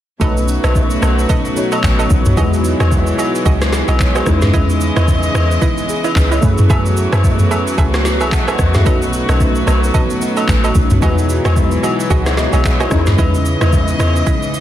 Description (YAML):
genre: amapiano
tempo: 111 BPM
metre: 4/4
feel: swing 58% on 16ths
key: unclear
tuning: A4 = 444 Hz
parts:
  - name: warm analog keys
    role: accompaniment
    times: 0.2-14.6 s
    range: G3 to A5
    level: -20 LUFS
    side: left 1 dB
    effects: chorus
  - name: rich studio string section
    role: sustained chords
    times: 0.2-14.6 s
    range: B2 to D#5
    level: -21 LUFS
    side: equal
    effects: sidechain pumping
  - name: hollow square pluck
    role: stabs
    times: 0.2-14.6 s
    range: E4 to E5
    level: -23 LUFS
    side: right 6 dB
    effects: chorus, tape echo
  - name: deep log drum bass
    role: bass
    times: 0.2-14.2 s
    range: A1 to F#2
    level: -16 LUFS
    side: equal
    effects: none
  - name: smooth R&B drum kit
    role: drums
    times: 0.2-14.6 s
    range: handclaps, kick drum, rim click, shaker, snare drum, toms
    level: -16 LUFS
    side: equal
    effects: soft clipping on snare
  - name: agogo bells and woodblock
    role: percussion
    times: 0.2-14.1 s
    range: none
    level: -27 LUFS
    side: left 5 dB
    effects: none
room: digital ambience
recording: dense, heavily limited modern master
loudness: -12 LUFS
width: side -12 dB against mid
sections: 0.2-14.6 A section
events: drop 0.2-14.6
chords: 0.2 B7; 2.4 Emaj9; 4.3 C#m9/E; 6.4 F#m11; 8.9 B7; 11.0 Emaj9; 12.9 C#m9/E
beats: | 0.21 0.75 1.29 1.83 | 2.38 2.92 3.46 4.00 | 4.54 5.08 5.62 6.16 | 6.70 7.24 7.78 8.32 | 8.86 9.40 9.94 10.48 | 11.02 11.56 12.11 12.64 | 13.19 13.73 14.27